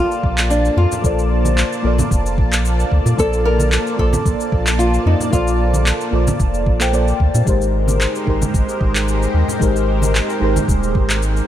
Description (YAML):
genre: sunset chillout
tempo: 112 BPM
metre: 4/4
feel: swing 53% on 16ths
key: Bb major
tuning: A4 = 440 Hz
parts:
  - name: nylon-string guitar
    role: melody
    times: 0.0-5.8 s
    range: D4 to Bb4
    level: -21 LUFS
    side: equal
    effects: tape echo
  - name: mellow FM electric piano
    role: accompaniment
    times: 0.0-11.5 s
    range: Ab3 to A5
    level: -22 LUFS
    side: moving between left 5 dB and right 3 dB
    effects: chorus, phaser, auto-pan, digital delay
  - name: lush unison pad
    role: sustained chords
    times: 0.0-11.5 s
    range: Ab3 to A5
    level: -24 LUFS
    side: equal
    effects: chorus, phaser
  - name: warm sub bass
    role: bass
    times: 0.0-11.4 s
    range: Eb1 to Bb2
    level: -17 LUFS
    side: equal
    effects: none
  - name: electronic shaker and handclaps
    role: drums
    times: 0.1-11.5 s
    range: none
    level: -23 LUFS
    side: left 1 dB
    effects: none
  - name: electronic kick drum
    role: drums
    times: 0.2-11.1 s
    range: none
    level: -19 LUFS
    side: equal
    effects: none
  - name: congas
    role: percussion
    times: 0.9-10.7 s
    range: none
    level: -25 LUFS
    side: right 2 dB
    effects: none
room: light reverb, digital ambience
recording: none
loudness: -14 LUFS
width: side -11 dB against mid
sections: 0.0-11.5 A section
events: none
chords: 0.0 Bbmaj7; 7.5 Abmaj9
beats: 0.51 | 1.04 1.58 2.11 2.65 | 3.18 3.72 4.25 4.79 | 5.33 5.86 6.40 6.93 | 7.47 8.01 8.54 9.08 | 9.61 10.15 10.68 11.22